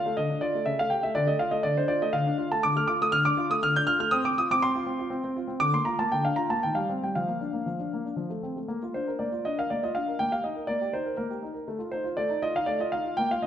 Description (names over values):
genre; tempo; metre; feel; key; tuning
classical-period piano sonatina; 121 BPM; 3/4; straight; Bb major; A4 = 440 Hz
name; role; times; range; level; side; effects
warm grand piano; solo; 0.0-13.5 s; C#3 to G6; -25 LUFS; equal; none
room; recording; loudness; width
wet recital hall reverb, RT60 1.4 s; none; -25 LUFS; side -9 dB against mid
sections
0.0-8.7 A section; 8.7-13.5 B section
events
none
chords
0.0 Dm; 0.7 A7/C#; 1.2 Dm; 4.1 F5/C; 5.6 Bb/D; 6.6 Cm/Eb; 7.1 Bb/F; 8.2 F; 8.7 Bb; 10.2 Eb/Bb; 11.7 F7/A